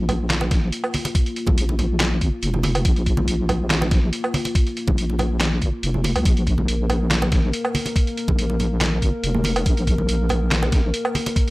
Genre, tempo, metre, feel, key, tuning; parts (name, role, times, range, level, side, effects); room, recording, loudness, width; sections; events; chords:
deep dubstep; 141 BPM; 4/4; half-time; A4 = 440 Hz
dark analog pad; sustained chords; 0.0-11.5 s; Bb3 to Bb4; -28 LUFS; left 2 dB; chorus
deep soft wobble bass; bass; 0.0-10.9 s; F1 to Db2; -22 LUFS; equal; chorus
trip hop sampler-style drum kit; drums; 0.1-11.5 s; handclaps, hi-hat, snare drum, woodblock; -24 LUFS; right 1 dB
congas; percussion; 0.1-11.3 s; -28 LUFS; right 1 dB
electronic kick drum; drums; 0.5-11.5 s; -19 LUFS; equal
digital ambience; -18 LUFS; side -21 dB against mid
0.0-11.5 A section
0.0 Bb5